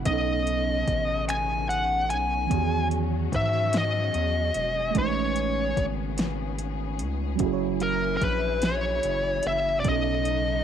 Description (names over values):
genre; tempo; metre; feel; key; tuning
slow six-eight R&B; 49 BPM (dotted quarters); 6/8; straight; E major; A4 = 440 Hz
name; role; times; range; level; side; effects
mellow FM electric piano; accompaniment; 0.0-10.6 s; B2 to C#5; -30 LUFS; right 13 dB; chorus
warm studio string section; sustained chords; 0.0-10.6 s; A#2 to G#4; -36 LUFS; left 15 dB; none
round analog bass; bass; 0.0-10.6 s; E1 to G#2; -30 LUFS; left 1 dB; none
smooth overdriven lead guitar; melody; 0.1-10.6 s; A#4 to G#5; -26 LUFS; left 2 dB; slapback echo
smooth R&B drum kit; drums; 0.1-10.4 s; finger snaps, hi-hat, kick drum, snare drum; -29 LUFS; left 1 dB; overdrive
room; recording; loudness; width
moderate spring reverb, RT60 2.0 s; 1960s-style stereo with parts hard left and right; -23 LUFS; side -9 dB against mid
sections
0.0-10.6 A section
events
none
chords
0.1 B9; 2.5 Emaj9; 5.0 Amaj9#11; 7.4 F#9; 9.8 B9